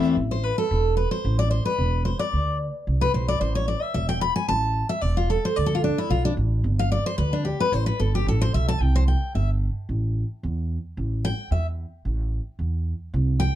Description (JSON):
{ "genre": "bluegrass", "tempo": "222 BPM", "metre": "4/4", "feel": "swing 54% on 8ths", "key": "A minor", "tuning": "A4 = 440 Hz", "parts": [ { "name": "picked steel-string acoustic guitar", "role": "accompaniment", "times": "0.0-13.6 s", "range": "E2 to B5", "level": "-24 LUFS", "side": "left 1 dB", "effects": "none" }, { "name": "upright bass", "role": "bass", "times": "0.2-13.5 s", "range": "E1 to E2", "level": "-23 LUFS", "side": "right 1 dB", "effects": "none" } ], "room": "light reverb", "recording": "dark, warm production", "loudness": "-22 LUFS", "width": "side -12 dB against mid", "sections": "0.2-8.8 A section; 8.8-13.6 A section", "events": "steel-string acoustic guitar solo 0.2-13.6", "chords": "0.2 Am; 2.3 Bm; 3.4 A5; 5.6 D5; 6.6 G5; 7.7 G69; 8.8 C5; 9.9 A5", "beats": "| 0.16 0.43 0.70 0.97 | 1.25 1.51 1.79 2.06 | 2.33 2.60 2.87 3.14 | 3.41 3.68 3.95 4.22 | 4.49 4.76 5.03 5.30 | 5.57 5.84 6.11 6.38 | 6.65 6.92 7.19 7.46 | 7.73 8.00 8.27 8.54 | 8.81 9.08 9.35 9.62 | 9.89 10.16 10.43 10.70 | 10.97 11.24 11.51 11.78 | 12.05 12.32 12.59 12.86 | 13.13 13.40" }